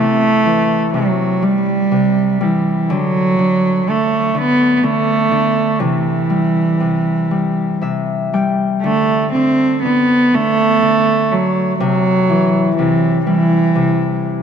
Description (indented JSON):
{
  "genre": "celtic folk, Celtic slow air",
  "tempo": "41 BPM (dotted quarters)",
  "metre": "6/8",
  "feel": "rubato",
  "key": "unclear",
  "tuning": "A4 = 441 Hz",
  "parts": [
    { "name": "warm cello", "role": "melody", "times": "0.0-14.3 s", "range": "E3 to C4", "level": "-14 LUFS", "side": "right 3 dB", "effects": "none" },
    { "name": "Celtic harp", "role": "accompaniment", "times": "0.0-14.4 s", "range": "C3 to G5", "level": "-19 LUFS", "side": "left 6 dB", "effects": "none" }
  ],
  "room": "moderate church reverb, RT60 3.6 s",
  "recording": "dark, warm production",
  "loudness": "-13 LUFS",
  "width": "side -7 dB against mid",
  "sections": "0.0-8.8 A section; 8.8-14.4 B section",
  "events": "harp fill 7.3-8.8",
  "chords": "0.0 C; 2.9 N.C.; 5.8 C; 8.8 N.C.; 11.8 C"
}